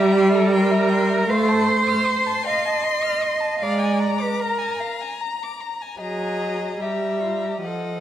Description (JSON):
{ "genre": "classical, slow romantic movement for string quartet", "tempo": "71-80 BPM", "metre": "3/4", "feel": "rubato", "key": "unclear", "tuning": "A4 = 438 Hz", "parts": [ { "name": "warm violin", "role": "melody", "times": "0.0-8.0 s", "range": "Gb5 to C6", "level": "-30 LUFS", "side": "left 8 dB", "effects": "none" }, { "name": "rich violin", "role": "second line", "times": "0.0-8.0 s", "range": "Eb5 to F6", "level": "-27 LUFS", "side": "left 3 dB", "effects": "none" }, { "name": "warm viola", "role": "accompaniment", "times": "0.0-8.0 s", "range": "F3 to A3", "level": "-21 LUFS", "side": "right 1 dB", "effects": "none" }, { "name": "rich cello", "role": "bass", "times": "0.0-8.0 s", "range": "F4 to Eb5", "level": "-23 LUFS", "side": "right 3 dB", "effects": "none" } ], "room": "moderate recital hall reverb, RT60 1.6 s", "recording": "none", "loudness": "-19 LUFS", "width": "side -11 dB against mid", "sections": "0.0-8.0 A section", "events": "none", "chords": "0.0 C7/G; 1.3 F/A; 3.6 Bb7/Ab; 6.0 Ebm/Gb; 6.8 Gm6", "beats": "0.51 | 1.28 2.07 2.85 | 3.61 4.40 5.20 | 5.99 6.80 7.63" }